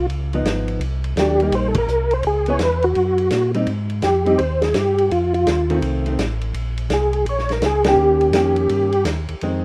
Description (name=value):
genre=soul jazz organ trio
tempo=167 BPM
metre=4/4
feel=swing 65% on 8ths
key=unclear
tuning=A4 = 441 Hz
part: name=percussive tonewheel organ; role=melody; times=0.0-9.0 s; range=F4 to Db5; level=-20 LUFS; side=equal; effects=slow rotary speaker, overdrive, chorus vibrato
part: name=mellow tonewheel organ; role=bass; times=0.0-9.6 s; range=Ab1 to Bb2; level=-25 LUFS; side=equal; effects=slow rotary speaker
part: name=warm soul drum kit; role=drums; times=0.1-9.5 s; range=hi-hat, kick drum, ride cymbal, snare drum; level=-29 LUFS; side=equal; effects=none
part: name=vintage hollow-body jazz guitar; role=accompaniment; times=0.3-9.6 s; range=Eb3 to Ab4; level=-26 LUFS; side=equal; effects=none
room=light reverb, studio ambience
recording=rough home demo mix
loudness=-19 LUFS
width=mono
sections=0.0-9.4 A section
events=band accent 1.7, 7.8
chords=0.1 Db9; 0.8 Cm7; 2.2 Dbm7; 3.0 Gb; 3.7 Abmaj7(no3); 5.1 F7; 6.5 Bbm9; 8.0 Eb7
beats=0.09 0.45 | 0.81 1.17 1.53 1.88 | 2.24 2.60 2.96 3.32 | 3.68 4.04 4.39 4.75 | 5.11 5.47 5.83 6.19 | 6.55 6.91 7.27 7.63 | 7.99 8.35 8.71 9.07 | 9.43